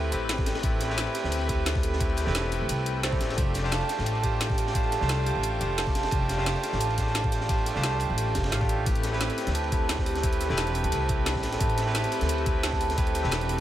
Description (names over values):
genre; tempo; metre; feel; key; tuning
liquid drum and bass; 175 BPM; 4/4; swing 53% on 16ths; A minor; A4 = 440 Hz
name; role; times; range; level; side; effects
barky tine electric piano; accompaniment; 0.0-13.6 s; A3 to F5; -32 LUFS; left 1 dB; medium stereo tremolo, digital delay
lush unison pad; sustained chords; 0.0-13.6 s; C4 to D6; -36 LUFS; left 1 dB; chorus
vibraphone with medium mallets; arpeggios; 0.0-13.6 s; G4 to A5; -32 LUFS; right 5 dB; tape echo
upright bass; bass; 0.0-13.6 s; E1 to D2; -29 LUFS; equal; none
crunchy breakbeat drum kit; drums; 0.1-13.6 s; ride cymbal, snare drum; -37 LUFS; equal; high-pass filter on cymbals, small room ambience, high-pass filter on snare, high-pass filter on room
drum and bass drum kit; drums; 0.1-13.6 s; hi-hat, snare drum; -32 LUFS; equal; overdrive, small room ambience
electronic kick drum; drums; 0.4-13.1 s; none; -28 LUFS; equal; overdrive, small room ambience
room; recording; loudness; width
small room ambience; none; -24 LUFS; side -12 dB against mid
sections
0.0-8.9 A section; 8.9-13.6 A section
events
drop 0.0-8.9, 8.9-13.6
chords
0.0 Am9; 3.4 F69; 8.9 Am9